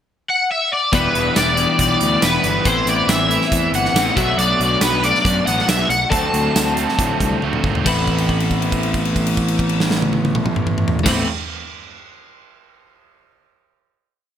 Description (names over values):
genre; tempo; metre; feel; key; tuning
indie rock; 139 BPM; 4/4; straight; A dorian; A4 = 440 Hz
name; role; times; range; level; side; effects
cranked stack guitar; melody; 0.3-7.4 s; B4 to A5; -18 LUFS; left 1 dB; overdrive, ensemble chorus
crunchy overdriven guitar; riff; 0.9-11.3 s; E3 to E4; -23 LUFS; right 6 dB; wide subtle chorus, digital delay
twelve-string electric guitar; riff; 0.9-11.3 s; E2 to F#4; -22 LUFS; left 6 dB; lush chorus
fuzz picked electric bass; bass; 0.9-11.2 s; E1 to A2; -23 LUFS; right 1 dB; overdrive
big rock drum kit; drums; 0.9-11.2 s; crash cymbal, hi-hat, kick drum, snare drum, tambourine, toms; -22 LUFS; right 1 dB; gated reverb
room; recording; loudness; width
light reverb, small room ambience; bright 1980s-style digital production; -15 LUFS; side -9 dB against mid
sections
0.0-0.9 pickup bar; 0.9-7.9 pre-chorus; 7.9-11.3 final chord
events
drum fill 7.4-7.9; held note 7.9-11.1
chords
0.0 N.C.; 0.9 Em7; 2.7 Amadd9; 4.2 Bm7; 6.1 D7; 7.9 Amadd9